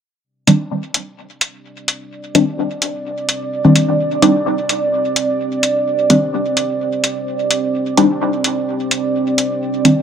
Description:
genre	dub techno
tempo	128 BPM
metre	4/4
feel	swing 53% on 16ths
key	C minor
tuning	A4 = 442 Hz
part	deep dark ambient pad	sustained chords	2.3-10.0 s	C4 to D5	-18 LUFS	right 3 dB	chorus, built-in reverb
part	filtered dub chord stab	stabs	0.5-9.9 s	Eb3 to D4	-14 LUFS	left 1 dB	chorus, phaser, dub echo
part	electronic hi-hat	drums	0.5-9.9 s	none	-17 LUFS	equal	none
room	moderate spring reverb, RT60 1.7 s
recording	echo-heavy mix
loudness	-14 LUFS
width	side -8 dB against mid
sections	0.2-10.0 A section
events	filter sweep on synth stab 0.2-10.0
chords	0.2 Cmadd9

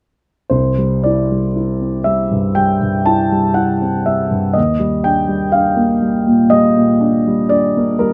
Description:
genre	classical, impressionist solo piano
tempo	60 BPM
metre	4/4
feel	rubato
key	unclear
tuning	A4 = 440 Hz
part	warm grand piano	solo	0.5-8.1 s	C2 to A5	-15 LUFS	equal	none
room	light reverb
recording	none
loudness	-15 LUFS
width	mono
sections	0.5-8.1 A section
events	none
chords	0.5 Cadd9; 4.6 Ebmaj7

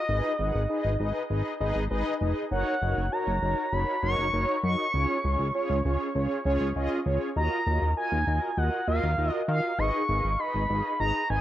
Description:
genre	synth-pop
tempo	99 BPM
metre	4/4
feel	straight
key	unclear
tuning	A4 = 439 Hz
part	expressive synth lead	melody	0.0-11.4 s	Eb5 to Db6	-29 LUFS	equal	chorus, analog delay
part	mellow synth brass	accompaniment	0.0-11.4 s	Db4 to Gb5	-30 LUFS	equal	chorus, analog delay
part	chorused synth bass	bass	0.1-11.4 s	F1 to Eb3	-27 LUFS	equal	none
room	moderate spring reverb, RT60 1.6 s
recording	echo-heavy mix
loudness	-25 LUFS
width	side -13 dB against mid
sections	0.0-11.4 A section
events	none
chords	0.1 Abm; 2.5 Gb6; 4.9 Db; 7.4 Ebmadd9; 9.8 Abm

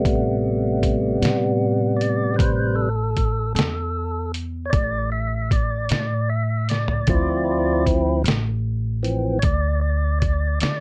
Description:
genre	slow blues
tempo	51 BPM (dotted quarters)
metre	12/8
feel	straight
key	A minor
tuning	A4 = 440 Hz
part	tonewheel organ	sustained chords	0.0-10.8 s	C3 to E5	-25 LUFS	equal	slow rotary speaker
part	upright bass	bass	0.1-10.8 s	A1 to D3	-26 LUFS	equal	none
part	lo-fi sampler-style drum kit	drums	0.1-10.8 s	hi-hat, kick drum, snare drum, toms	-24 LUFS	equal	none
room	little or no reverb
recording	none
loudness	-22 LUFS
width	mono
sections	0.0-10.8 A section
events	tonewheel organ solo 0.0-10.8; drum fill 6.7-7.1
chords	0.0 Am7; 7.1 Dm7

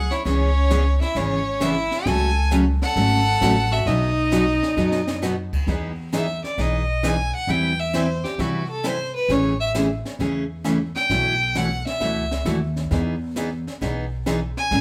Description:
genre	country, western swing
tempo	133 BPM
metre	4/4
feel	swing 68% on 8ths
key	E major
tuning	A4 = 440 Hz
part	clear fiddle	melody	0.0-14.8 s	F#4 to G#5	-26 LUFS	equal	none
part	clear fiddle	second line	0.0-5.2 s	C#4 to A4	-28 LUFS	equal	none
part	upright bass	bass	0.0-14.8 s	G#1 to C3	-27 LUFS	equal	none
part	jazz brush drum kit	drums	0.1-14.8 s	brushed snare drum, crash cymbal, hi-hat, kick drum, snare drum	-33 LUFS	equal	none
part	picked steel-string acoustic guitar	accompaniment	0.2-14.8 s	B2 to B4	-26 LUFS	equal	none
room	moderate large studio reverb, RT60 0.9 s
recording	band playing live in one room, faint mains hum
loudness	-22 LUFS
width	mono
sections	0.0-5.7 A section; 5.7-14.8 B section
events	drum fill 4.8-5.2; fiddle solo 5.7-14.8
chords	0.3 C#m7; 2.1 F#m/C#; 3.9 B; 5.7 Emaj7; 7.5 Cmaj7/E; 9.3 Amaj7; 11.1 B9sus4; 12.9 Emaj7

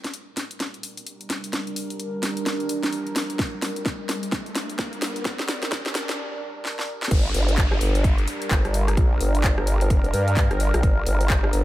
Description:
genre	bass house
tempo	129 BPM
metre	4/4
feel	swing 61% on 16ths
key	G minor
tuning	A4 = 441 Hz
part	sweeping resonant pad	sustained chords	0.0-11.6 s	G3 to Bb4	-30 LUFS	right 1 dB	chorus, phaser, sidechain pumping
part	house drum kit	drums	0.0-11.6 s	crash cymbal, handclaps, hi-hat, rim click, snare drum	-28 LUFS	equal	overdrive, studio reverb
part	riser and downlifter	sound effects	0.0-10.8 s	none	-37 LUFS	equal	none
part	electronic kick drum	drums	3.4-11.4 s	none	-22 LUFS	equal	studio reverb
part	vowel-sweep wobble bass	bass	7.1-11.6 s	F1 to G2	-22 LUFS	equal	chorus, overdrive, sidechain pumping
room	little or no reverb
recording	high-pass filter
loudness	-21 LUFS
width	side -15 dB against mid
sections	0.0-7.1 A section; 7.1-11.6 B section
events	build-up 0.0-7.1; drum fill 0.0-6.2, 6.6-7.1; riser 0.0-6.2; filter sweep on analog synth pad 0.0-7.1; break 6.2-7.1; drop 7.1-11.6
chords	0.0 Gm

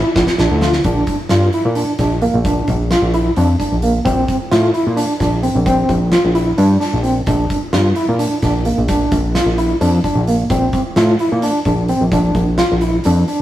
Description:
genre	progressive instrumental, band music in an uneven meter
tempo	261 BPM (eighths)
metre	7/8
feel	straight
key	Bb lydian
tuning	A4 = 440 Hz
part	overdriven tine electric piano	arpeggios	0.0-13.4 s	Bb3 to F4	-17 LUFS	right 1 dB	fast tremolo
part	fat analog bass	bass	0.0-13.2 s	Bb1 to Bb2	-16 LUFS	equal	none
part	oversized low-tuned drum kit	drums	0.2-13.4 s	hi-hat, kick drum, snare drum	-20 LUFS	equal	none
room	moderate stone room reverb, RT60 1.3 s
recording	rough rehearsal-room recording, tube saturation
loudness	-13 LUFS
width	side -13 dB against mid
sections	0.8-13.4 A section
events	drum fill 0.0-0.8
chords	0.0 Bb; 4.1 C7(no3)/Bb; 7.3 Bb; 10.5 C7(no3)/Bb; 12.1 Bb

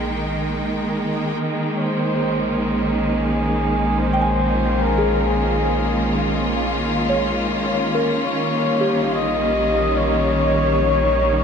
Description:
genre	ambient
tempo	70 BPM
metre	4/4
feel	straight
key	Bb dorian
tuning	A4 = 440 Hz
part	warm flugelhorn	melody	0.0-11.4 s	Ab4 to F5	-23 LUFS	left 1 dB	ping-pong delay
part	clear studio string section	sustained chords	0.0-11.4 s	Eb3 to G5	-20 LUFS	equal	low-pass filter
part	deep rumbling drone	bass	0.0-11.4 s	Bb1	-26 LUFS	right 1 dB	built-in reverb
part	soft synth bell	arpeggios	4.1-11.4 s	G4 to Ab5	-25 LUFS	left 1 dB	chorus, ping-pong delay
room	wet huge ambient reverb, RT60 9.3 s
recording	none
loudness	-17 LUFS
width	side -6 dB against mid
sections	0.0-1.4 A section; 1.4-11.4 B section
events	none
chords	0.0 Absus2/Bb; 1.4 Bbm9; 8.3 Eb7/Bb

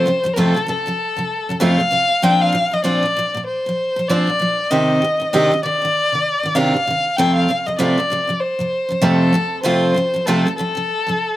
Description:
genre	acoustic pop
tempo	97 BPM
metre	4/4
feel	swing 60% on 16ths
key	F mixolydian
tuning	A4 = 440 Hz
part	warm violin	melody	0.0-11.4 s	A4 to G5	-18 LUFS	left 1 dB	none
part	picked steel-string acoustic guitar	accompaniment	0.0-11.3 s	F2 to G4	-18 LUFS	right 1 dB	none
room	light reverb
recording	recorded outdoors, with no room sound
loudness	-15 LUFS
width	side -14 dB against mid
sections	0.0-11.4 A section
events	none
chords	0.0 F; 2.2 Bbadd9; 4.7 Cmadd9; 7.2 F

